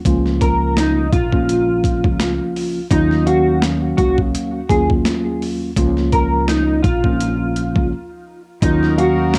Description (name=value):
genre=hip hop, boom-bap hip-hop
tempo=84 BPM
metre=4/4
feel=swing 56% on 16ths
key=Eb minor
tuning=A4 = 440 Hz
part: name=mellow tine electric piano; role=accompaniment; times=0.1-9.4 s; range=Db2 to F5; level=-22 LUFS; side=equal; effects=high-pass filter, low-pass filter, cassette tape, plate reverb
part: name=upright bass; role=bass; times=0.1-9.4 s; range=Bb1 to Eb2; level=-23 LUFS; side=equal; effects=none
part: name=boom bap sampler-style drum kit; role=drums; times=0.1-9.4 s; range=hi-hat, kick drum, snare drum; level=-22 LUFS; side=equal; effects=overdrive, cassette tape
part: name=electric guitar at the edge of break-up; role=melody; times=0.4-9.3 s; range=Eb4 to Bb4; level=-22 LUFS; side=equal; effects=analog chorus, high-pass filter, low-pass filter, plate reverb, analog delay
part: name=bright trumpet section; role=stabs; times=8.6-9.4 s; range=Eb4 to Bb4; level=-30 LUFS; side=equal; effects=high-pass filter, low-pass filter, cassette tape
room=light reverb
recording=home recording on cassette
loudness=-17 LUFS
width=mono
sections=0.0-8.6 A section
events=break 7.9-8.6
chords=0.1 Bbm; 2.9 Ebm7; 5.8 Bbm; 8.6 Ebm7